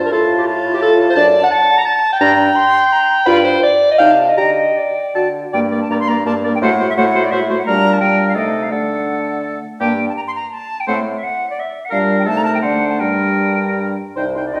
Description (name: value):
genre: quick classical-period movement for wind quintet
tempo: 152-175 BPM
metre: 3/4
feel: rubato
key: G minor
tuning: A4 = 439 Hz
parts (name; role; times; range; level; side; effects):
- silver concert flute; melody; 0.0-14.6 s; D5 to C6; -24 LUFS; equal; none
- warm oboe; second line; 0.0-14.6 s; G4 to B5; -24 LUFS; equal; none
- mellow French horn; accompaniment; 0.0-14.6 s; G3 to G4; -22 LUFS; equal; none
- warm bassoon; bass; 0.0-14.6 s; C2 to D3; -23 LUFS; equal; none
- mellow clarinet; accompaniment; 0.1-14.6 s; C4 to Bb5; -18 LUFS; equal; none
room: wet recital hall reverb, RT60 1.6 s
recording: recorded in a church or concert hall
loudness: -15 LUFS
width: mono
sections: 0.0-5.5 A section; 5.5-14.2 B section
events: none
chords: 0.1 F/A; 1.2 D/F#; 2.2 Gm; 3.3 G7; 4.0 Cm; 4.4 G5/D; 5.2 D; 5.5 Gm; 6.6 F#dim/A; 7.7 Gm/Bb; 8.4 Adim/C; 8.7 D; 9.8 Gm; 10.9 A5; 11.9 Gm/Bb; 12.3 Adim/C; 12.6 D7; 13.0 Gm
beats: | 0.12 0.47 0.81 | 1.16 1.51 1.86 | 2.21 2.56 2.91 | 3.27 3.63 4.00 | 4.38 4.77 5.15 | 5.53 5.90 6.25 | 6.61 6.97 7.32 | 7.66 8.01 8.36 | 8.71 9.07 9.44 | 9.80 10.16 10.52 | 10.87 11.22 11.57 | 11.91 12.26 12.63 | 13.00 13.39 13.78 | 14.16 14.53